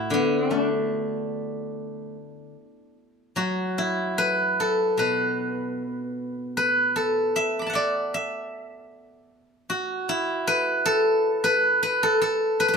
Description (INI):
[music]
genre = chinese traditional, Chinese solo plucked strings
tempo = 72-80 BPM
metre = 4/4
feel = rubato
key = A zhi mode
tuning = A4 = 440 Hz
[part]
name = steel-string zither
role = solo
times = 0.0-12.8 s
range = A2 to D6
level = -22 LUFS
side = equal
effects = none
[sound]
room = light reverb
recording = minimal, uncompressed stereo recording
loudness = -22 LUFS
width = side -5 dB against mid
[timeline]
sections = 0.0-12.8 A section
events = none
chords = none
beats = | 0.12 0.91 1.72 2.54 | 3.37 4.19 4.99 5.78 | 6.57 7.37 8.15 8.92 | 9.69 10.45 11.22 11.99 | 12.75